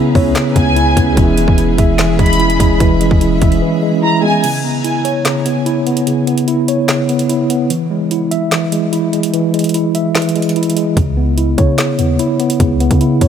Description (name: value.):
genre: hip hop, trap.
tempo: 147 BPM.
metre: 4/4.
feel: half-time.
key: C# minor.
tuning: A4 = 440 Hz.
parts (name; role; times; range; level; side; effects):
dark concert grand piano; accompaniment; 0.0-4.5 s; G#3 to E4; -23 LUFS; right 3 dB; low-pass filter.
granular cloud pad; sustained chords; 0.0-4.4 s; C#4 to E5; -23 LUFS; right 1 dB; built-in reverb.
mellow tine electric piano; arpeggios; 0.0-13.3 s; C#3 to E5; -14 LUFS; equal; medium stereo tremolo, low-pass filter, tape echo.
warm 808-style bass; bass; 0.0-3.6, 11.0-13.3 s; D#1 to C#3; -16 LUFS; equal; none.
trap drum kit; drums; 0.2-13.3 s; crash cymbal, handclaps, hi-hat, kick drum, snare drum; -17 LUFS; equal; none.
warm studio violin section; second line; 0.6-4.4 s; G#5 to B5; -20 LUFS; right 1 dB; tape echo.
room: light reverb, digital ambience.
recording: none.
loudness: -11 LUFS.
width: side -8 dB against mid.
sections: 0.0-4.4 A section; 4.4-13.3 B section.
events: drums muted 3.6-4.4; break 4.4-11.0.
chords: 0.0 C#m7; 1.2 E6; 4.4 C#m7; 7.7 E; 11.0 C#m7.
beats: 0.35 0.76 | 1.17 1.58 1.99 2.40 | 2.80 3.21 3.62 4.03 | 4.44 4.84 5.25 5.66 | 6.07 6.48 6.89 7.29 | 7.70 8.11 8.52 8.93 | 9.34 9.74 10.15 10.56 | 10.97 11.38 11.78 12.19 | 12.60 13.01.